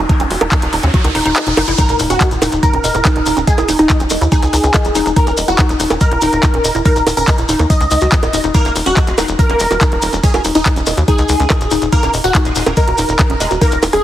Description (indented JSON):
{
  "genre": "psychedelic trance",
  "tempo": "142 BPM",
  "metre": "4/4",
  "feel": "straight",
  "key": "Eb phrygian",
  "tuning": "A4 = 440 Hz",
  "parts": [
    { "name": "woody wave-folded pluck", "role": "riff", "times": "0.0-14.0 s", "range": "Db4 to Eb5", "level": "-19 LUFS", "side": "moving between left 5 dB and right 5 dB", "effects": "chorus, auto-pan, sidechain pumping, digital delay" },
    { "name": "tight sequencer bass", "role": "bass", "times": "0.0-14.0 s", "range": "Eb1 to Eb2", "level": "-19 LUFS", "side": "equal", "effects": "none" },
    { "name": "riser and impact", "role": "sound effects", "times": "0.0-3.5 s", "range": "none", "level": "-23 LUFS", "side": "equal", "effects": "none" },
    { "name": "metallic wobble bass", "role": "second line", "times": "0.1-1.0, 8.5-13.7 s", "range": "Gb3 to Db4", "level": "-29 LUFS", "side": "right 3 dB", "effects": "distortion, ensemble chorus, sidechain pumping, high-pass filter, dub echo" },
    { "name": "electronic kick drum", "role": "drums", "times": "0.1-13.7 s", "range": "none", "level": "-13 LUFS", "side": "equal", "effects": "none" },
    { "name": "garage drum kit", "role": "drums", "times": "0.1-14.0 s", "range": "bongos, handclaps, hi-hat", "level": "-19 LUFS", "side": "right 2 dB", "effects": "none" },
    { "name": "supersaw stab", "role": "melody", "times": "1.8-14.0 s", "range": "Eb4 to Eb5", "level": "-17 LUFS", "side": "equal", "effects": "phaser, sidechain pumping, digital delay" },
    { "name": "maracas", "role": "percussion", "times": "1.8-14.0 s", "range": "none", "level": "-24 LUFS", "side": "left 3 dB", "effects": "none" }
  ],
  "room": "light reverb, digital ambience",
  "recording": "heavily compressed radio sound, multiband compression",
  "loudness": "-11 LUFS",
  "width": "side -12 dB against mid",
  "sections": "0.0-1.8 A section; 1.8-14.0 B section",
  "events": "riser 0.0-1.8; kick drops out 1.4-1.8; drop 1.8-14.0; impact 1.8-3.5",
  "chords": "0.0 Eb7(no3)"
}